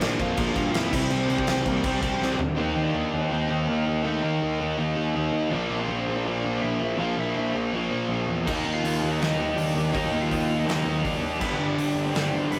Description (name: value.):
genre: punk rock.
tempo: 163 BPM.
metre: 4/4.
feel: straight.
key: unclear.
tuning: A4 = 440 Hz.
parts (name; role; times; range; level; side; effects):
smooth overdriven lead guitar; melody; 0.0-12.6 s; A3 to F5; -34 LUFS; equal; none.
overdriven electric guitar; riff; 0.0-12.6 s; G2 to Eb4; -30 LUFS; equal; none.
sludgy distorted guitar; riff; 0.0-12.6 s; G2 to Eb4; -38 LUFS; equal; none.
sludgy distorted guitar; riff; 0.0-12.6 s; G2 to Eb4; -33 LUFS; equal; overdrive.
fuzz picked electric bass; bass; 0.0-12.6 s; G1 to G2; -32 LUFS; equal; overdrive.
big rock drum kit; drums; 0.0-2.5, 8.5-12.6 s; crash cymbal, hi-hat, kick drum, snare drum, toms; -32 LUFS; equal; none.
room: moderate studio reverb, RT60 0.6 s.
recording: rough rehearsal-room recording.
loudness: -25 LUFS.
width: mono.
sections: 0.0-2.6 A section; 2.6-12.6 B section.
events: drum fill 2.2-2.6; half time 2.6-12.6.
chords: 0.0 Bb; 0.9 C; 2.6 Eb5; 5.5 Bb; 8.5 Eb5; 11.4 G.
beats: 0.01 0.37 0.74 | 1.11 1.47 1.84 2.21 | 2.57 2.94 3.31 3.68 | 4.04 4.41 4.78 5.15 | 5.52 5.89 6.25 6.62 | 6.99 7.36 7.73 8.10 | 8.46 8.83 9.20 9.57 | 9.94 10.30 10.67 11.04 | 11.41 11.78 12.14 12.51.